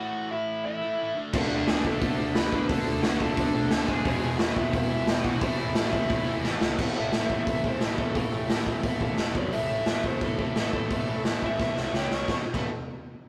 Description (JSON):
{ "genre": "punk rock", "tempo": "176 BPM", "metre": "4/4", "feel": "straight", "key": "unclear", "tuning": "A4 = 440 Hz", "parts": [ { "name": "lead guitar through a small cranked amp", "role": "melody", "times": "0.0-12.3 s", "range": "E4 to C#6", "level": "-34 LUFS", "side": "equal", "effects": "overdrive" }, { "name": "distorted electric guitar", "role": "riff", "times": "0.0-12.7 s", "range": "E2 to D4", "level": "-38 LUFS", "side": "equal", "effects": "none" }, { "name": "distorted electric guitar", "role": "riff", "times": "1.3-6.8 s", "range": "E2 to D4", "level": "-38 LUFS", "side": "equal", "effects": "overdrive" }, { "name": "raw garage guitar", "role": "riff", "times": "1.3-12.7 s", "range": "E2 to D4", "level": "-34 LUFS", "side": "equal", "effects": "overdrive" }, { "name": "picked electric bass", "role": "bass", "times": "1.3-12.7 s", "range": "E1 to F#2", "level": "-40 LUFS", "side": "equal", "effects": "none" }, { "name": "raw garage drum kit", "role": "drums", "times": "1.3-12.6 s", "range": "crash cymbal, hi-hat, kick drum, snare drum", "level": "-29 LUFS", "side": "equal", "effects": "none" } ], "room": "light reverb", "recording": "rough rehearsal-room recording, tube saturation", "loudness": "-27 LUFS", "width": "mono", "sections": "0.0-6.8 A section; 6.8-12.3 B section; 12.3-13.3 C section", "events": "drum fill 6.4-6.8, 11.6-12.3; lead electric guitar solo 6.8-12.3", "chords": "0.0 A5; 1.2 D5; 4.1 E; 5.4 A5; 9.4 F#5; 9.5 A5; 11.9 C#5; 12.3 A5" }